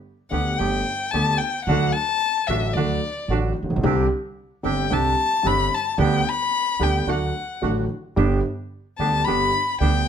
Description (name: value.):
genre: tango.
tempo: 111 BPM.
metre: 4/4.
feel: rubato.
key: G major.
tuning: A4 = 440 Hz.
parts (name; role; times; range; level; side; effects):
dark violin; second line; 0.3-10.1 s; D5 to B5; -23 LUFS; left 5 dB; none.
warm concert grand piano; accompaniment; 0.3-10.0 s; G1 to G4; -25 LUFS; equal; none.
bandoneon; stabs; 0.3-10.0 s; A3 to G4; -29 LUFS; right 9 dB; none.
upright bass; bass; 0.3-10.0 s; G1 to D2; -24 LUFS; right 2 dB; none.
room: light reverb.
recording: none.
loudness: -20 LUFS.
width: side -8 dB against mid.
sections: 0.0-10.1 A section.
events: violin solo 0.0-10.1.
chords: 0.0 Gadd9; 1.7 D; 3.8 Csus2; 6.0 G/D; 7.1 D; 8.2 G.